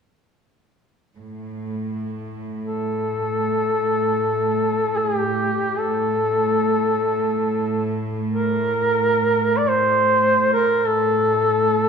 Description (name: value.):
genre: caucasian folk, Caucasian lament.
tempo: free time.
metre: none.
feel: none.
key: A phrygian.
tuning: A4 = 439 Hz.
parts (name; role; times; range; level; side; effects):
rich chamber cello section; drone; 1.2-11.9 s; A2; -25 LUFS; right 2 dB; none.
warm duduk; melody; 2.6-11.9 s; G4 to D5; -19 LUFS; equal; none.
room: moderate scoring stage reverb, RT60 1.8 s.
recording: recorded in a church or concert hall.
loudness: -18 LUFS.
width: side -6 dB against mid.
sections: 1.2-11.9 A section.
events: none.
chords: none.